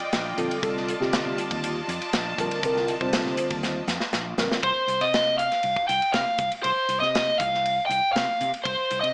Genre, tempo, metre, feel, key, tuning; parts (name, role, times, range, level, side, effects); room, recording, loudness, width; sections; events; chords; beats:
electric jazz fusion; 120 BPM; 4/4; straight; C dorian; A4 = 441 Hz
bright symphonic string section; sustained chords; 0.0-4.6 s; F4 to A5; -34 LUFS; equal
fretless electric bass; bass; 0.0-9.1 s; Bb1 to C3; -38 LUFS; equal
modern studio drum kit; drums; 0.0-9.1 s; hi-hat, kick drum, ride cymbal, snare drum; -32 LUFS; equal
mellow tine electric piano; accompaniment; 0.4-4.6 s; D3 to C5; -30 LUFS; equal; phaser
lead guitar through a small cranked amp; melody; 4.6-9.1 s; C5 to G5; -24 LUFS; equal; overdrive, slapback echo
moderate large studio reverb, RT60 1.2 s, small room ambience; small speaker sound; -25 LUFS; mono
0.0-4.6 A section; 4.6-9.1 B section
drum fill 3.6-4.6
0.0 Cm11; 4.6 Csus4
0.13 | 0.63 1.13 1.63 2.13 | 2.63 3.13 3.63 4.13 | 4.64 5.14 5.64 6.14 | 6.64 7.14 7.65 8.15 | 8.65